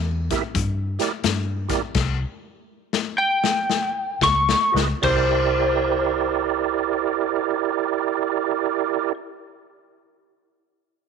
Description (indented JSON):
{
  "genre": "electric blues shuffle",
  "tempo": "72-89 BPM",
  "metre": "4/4",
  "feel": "swing 64% on 8ths",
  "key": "C mixolydian",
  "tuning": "A4 = 439 Hz",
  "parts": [
    { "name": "lightly driven lead guitar", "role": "melody", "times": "0.0-9.1 s", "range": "C5 to Db6", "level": "-22 LUFS", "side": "left 1 dB", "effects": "slapback echo" },
    { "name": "vintage muted fingered electric bass", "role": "bass", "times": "0.0-9.4 s", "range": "C2 to G2", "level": "-25 LUFS", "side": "left 1 dB", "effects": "none" },
    { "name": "tonewheel organ", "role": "accompaniment", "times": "0.3-9.1 s", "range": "E4 to E5", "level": "-23 LUFS", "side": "right 13 dB", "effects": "slow rotary speaker, overdrive, chorus vibrato" },
    { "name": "raw garage drum kit", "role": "drums", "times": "0.3-5.3 s", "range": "crash cymbal, hi-hat, kick drum, snare drum", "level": "-25 LUFS", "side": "left 8 dB", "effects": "none" }
  ],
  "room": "light reverb, small room ambience",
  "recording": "1960s-style stereo with parts hard left and right",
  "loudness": "-20 LUFS",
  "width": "side -6 dB against mid",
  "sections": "0.0-5.0 A section; 5.0-8.4 B section",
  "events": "slowing down 0.0-5.0; drum fill 2.0-5.0",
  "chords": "0.0 C9 (rootless); 2.0 Csus2; 4.2 Db9; 5.0 C9"
}